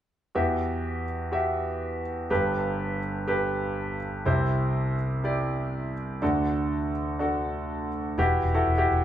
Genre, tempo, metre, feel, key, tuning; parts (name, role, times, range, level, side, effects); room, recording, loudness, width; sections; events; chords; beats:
pop; 123 BPM; 4/4; straight; E minor; A4 = 440 Hz
clear concert grand piano; accompaniment; 0.3-9.0 s; G1 to E5; -25 LUFS; equal
vintage muted fingered electric bass; bass; 8.2-9.0 s; E1; -25 LUFS; left 1 dB
wet studio reverb, RT60 0.6 s; band playing live in one room; -25 LUFS; side -11 dB against mid
0.3-8.2 A section
0.3 Emadd9; 2.3 Gadd9; 4.3 C; 6.2 D; 8.2 Emadd9
| 0.34 0.83 1.32 1.81 | 2.30 2.79 3.28 3.77 | 4.26 4.75 5.24 5.73 | 6.22 6.71 7.20 7.68 | 8.18 8.66